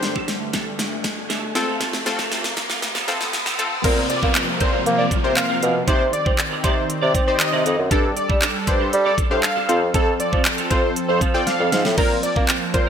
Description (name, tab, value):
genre	dance-pop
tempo	118 BPM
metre	4/4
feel	straight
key	Bb major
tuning	A4 = 440 Hz
part	analog pluck	accompaniment	0.0-12.9 s	C4 to F5	-27 LUFS	left 3 dB	chorus, sidechain pumping
part	warm analog pad	sustained chords	0.0-12.9 s	F2 to A4	-29 LUFS	left 1 dB	chorus, sidechain pumping
part	clean electric guitar	riff	0.0-12.9 s	C4 to D5	-30 LUFS	right 7 dB	ensemble chorus
part	pop drum kit	drums	0.0-12.9 s	crash cymbal, handclaps, hi-hat, kick drum, snare drum	-22 LUFS	equal	gated reverb
part	riser and downlifter	sound effects	0.0-7.9 s	none	-29 LUFS	equal	none
part	wide unison lead	melody	3.8-12.9 s	A4 to G5	-23 LUFS	equal	none
part	mellow bassoon	bass	3.8-12.9 s	F2 to C4	-22 LUFS	right 1 dB	sidechain pumping
room	moderate lush hall reverb, RT60 2.3 s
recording	bright 1980s-style digital production, high-pass filter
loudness	-17 LUFS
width	side -8 dB against mid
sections	0.0-3.8 A section; 3.8-12.9 B section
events	build-up 0.0-3.8; drum fill 0.0-3.8, 11.5-12.0; riser 0.0-3.8; filter sweep 0.0-3.8; drop 3.8-12.9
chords	0.0 Gsus2; 1.6 F; 3.8 Bbsus2; 5.9 Cmadd9; 7.9 Gsus2; 9.7 F; 12.0 Bbsus2